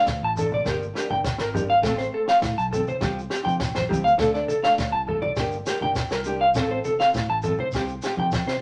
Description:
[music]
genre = highlife guitar band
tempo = 102 BPM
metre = 4/4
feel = straight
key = unclear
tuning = A4 = 440 Hz
[part]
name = flamenco guitar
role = accompaniment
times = 0.0-8.4 s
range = F3 to A4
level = -33 LUFS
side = equal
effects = none
[part]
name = electric guitar through a small old amp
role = arpeggios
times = 0.0-8.6 s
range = G4 to A5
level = -25 LUFS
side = equal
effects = spring reverb
[part]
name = fingered electric bass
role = bass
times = 0.1-8.6 s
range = G1 to C3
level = -34 LUFS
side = equal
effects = none
[part]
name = compact cocktail drum kit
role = drums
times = 0.1-8.6 s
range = kick drum, snare drum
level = -32 LUFS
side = equal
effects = none
[part]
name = shekere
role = percussion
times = 0.1-8.6 s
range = none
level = -37 LUFS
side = equal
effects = none
[part]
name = congas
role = percussion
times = 0.4-8.3 s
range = none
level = -34 LUFS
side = equal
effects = none
[sound]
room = moderate studio reverb, RT60 0.6 s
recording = none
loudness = -24 LUFS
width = mono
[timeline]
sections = 0.0-8.6 A section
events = none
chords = 0.0 Dm; 0.7 Gm7; 1.8 F/A; 3.0 Csus4; 4.2 Dm; 5.4 Gm7; 6.6 F/A; 7.7 Csus4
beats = 0.07 0.66 1.25 | 1.84 2.43 3.02 3.60 | 4.19 4.78 5.37 5.96 | 6.55 7.14 7.74 8.33

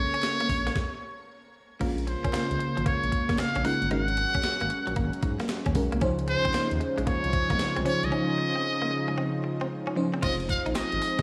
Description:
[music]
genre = R&B, new jack swing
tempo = 114 BPM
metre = 4/4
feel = swing 65% on 16ths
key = unclear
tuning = A4 = 443 Hz
[part]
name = trumpet with metal mute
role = melody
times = 0.0-11.2 s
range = C5 to Gb5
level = -32 LUFS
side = equal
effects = tape echo, shimmer reverb
[part]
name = FM electric piano with soft pad layer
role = accompaniment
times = 0.0-11.2 s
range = F3 to Eb5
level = -34 LUFS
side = equal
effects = chorus, tremolo, shimmer reverb
[part]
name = warm analog pad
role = sustained chords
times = 0.0-11.2 s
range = Db3 to F4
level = -36 LUFS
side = equal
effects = chorus
[part]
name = smooth synth bass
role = bass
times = 0.0-11.2 s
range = F1 to Ab2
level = -34 LUFS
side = equal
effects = none
[part]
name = direct-recorded clean electric guitar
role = riff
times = 0.1-11.2 s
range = F3 to F4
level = -39 LUFS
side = equal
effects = analog chorus, shimmer reverb
[part]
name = gated 80s digital drum machine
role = drums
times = 0.1-11.2 s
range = crash cymbal, hi-hat, kick drum, snare drum, tambourine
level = -33 LUFS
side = equal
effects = gated reverb, gated reverb snare
[part]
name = group handclap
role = percussion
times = 0.2-10.9 s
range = none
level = -50 LUFS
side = equal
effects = none
[sound]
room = light reverb, digital ambience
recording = studio reverb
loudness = -27 LUFS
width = mono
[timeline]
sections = 0.0-1.8 A section; 1.8-10.2 B section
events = stop 0.8-1.8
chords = 0.0 Bbm9; 1.8 Bbm7; 3.9 Ab9sus4; 6.0 Dbmaj9; 10.2 Fm7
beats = 0.23 0.76 1.28 | 1.81 2.33 2.86 3.39 | 3.91 4.44 4.97 5.49 | 6.02 6.54 7.07 7.60 | 8.12 8.65 9.18 9.70 | 10.23 10.76

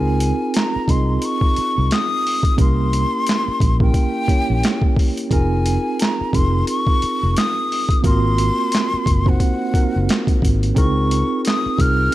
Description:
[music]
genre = R&B, neo-soul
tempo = 88 BPM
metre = 4/4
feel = swing 58% on 16ths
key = Db major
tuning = A4 = 440 Hz
[part]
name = breathy concert flute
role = melody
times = 0.0-12.1 s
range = Gb5 to F6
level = -22 LUFS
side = left 2 dB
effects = none
[part]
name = mellow tine electric piano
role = accompaniment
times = 0.0-12.1 s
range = Bb3 to Eb5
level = -22 LUFS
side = right 2 dB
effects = medium stereo tremolo
[part]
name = fretless electric bass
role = bass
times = 0.0-12.1 s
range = F1 to Db2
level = -19 LUFS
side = equal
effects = none
[part]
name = boom bap sampler-style drum kit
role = drums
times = 0.2-12.1 s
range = handclaps, hi-hat, kick drum, snare drum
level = -18 LUFS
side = equal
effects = overdrive
[sound]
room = little or no reverb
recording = dark, warm production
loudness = -16 LUFS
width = side -15 dB against mid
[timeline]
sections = 0.0-12.1 A section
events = none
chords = 0.0 Dbmaj9; 2.6 C7b9; 5.3 Fm7; 8.0 Ab13; 10.8 Dbmaj7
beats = 0.54 1.22 1.90 | 2.58 3.26 3.94 4.63 | 5.31 5.99 6.67 7.35 | 8.04 8.72 9.40 10.08 | 10.76 11.44 12.13

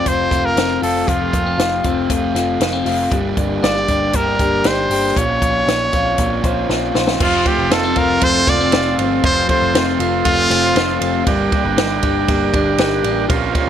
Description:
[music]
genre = jangly indie pop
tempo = 118 BPM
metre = 4/4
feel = straight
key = F major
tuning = A4 = 444 Hz
[part]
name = brilliant trumpet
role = melody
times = 0.0-11.0 s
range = F4 to D5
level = -18 LUFS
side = equal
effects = analog delay
[part]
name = raw garage guitar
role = accompaniment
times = 0.0-13.7 s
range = F2 to G4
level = -23 LUFS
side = right 6 dB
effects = overdrive
[part]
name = electric guitar through a small old amp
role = arpeggios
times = 0.0-13.7 s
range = Bb2 to C5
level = -20 LUFS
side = left 6 dB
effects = none
[part]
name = vintage muted picked electric bass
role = bass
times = 0.1-13.5 s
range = F1 to Bb1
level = -25 LUFS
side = equal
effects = none
[part]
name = compact cocktail drum kit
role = drums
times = 0.1-13.7 s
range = crash cymbal, hi-hat, kick drum, ride cymbal, snare drum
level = -20 LUFS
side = equal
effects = none
[part]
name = combo organ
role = accompaniment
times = 7.2-13.7 s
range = C4 to D5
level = -22 LUFS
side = right 7 dB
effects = none
[sound]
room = light reverb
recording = none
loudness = -14 LUFS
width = side -9 dB against mid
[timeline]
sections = 0.0-7.2 A section; 7.2-13.7 B section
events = drum fill 6.7-7.2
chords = 0.0 F; 3.1 Gm; 5.2 Bbmadd9; 7.2 F; 11.3 Gm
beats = 0.06 0.57 | 1.08 1.59 2.10 2.61 | 3.12 3.63 4.14 4.65 | 5.16 5.67 6.18 6.69 | 7.20 7.71 8.22 8.73 | 9.24 9.75 10.26 10.76 | 11.27 11.78 12.29 12.79 | 13.30

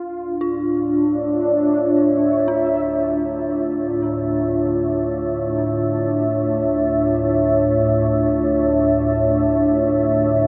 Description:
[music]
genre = dark ambient drone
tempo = free time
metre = none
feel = none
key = D harmonic minor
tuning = A4 = 440 Hz
[part]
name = sweeping resonant pad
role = sustained chords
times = 0.0-10.5 s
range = D4 to E5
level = -20 LUFS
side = equal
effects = chorus
[part]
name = organ-like drone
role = drone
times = 0.5-10.5 s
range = D2 to A2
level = -28 LUFS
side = equal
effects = ensemble chorus, built-in reverb
[part]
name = dark detuned synth bell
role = arpeggios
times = 0.4-10.5 s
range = D4 to F4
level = -37 LUFS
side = equal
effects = chorus, diffuse ambient delay
[sound]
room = wet huge ambient reverb, RT60 7.6 s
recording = in a vast, echoing space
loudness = -19 LUFS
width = mono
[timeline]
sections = 0.0-10.5 A section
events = fade-in on synth drone 0.0-10.5; fade-in on synth bell 0.0-10.5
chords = 0.0 Dmadd9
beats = free time

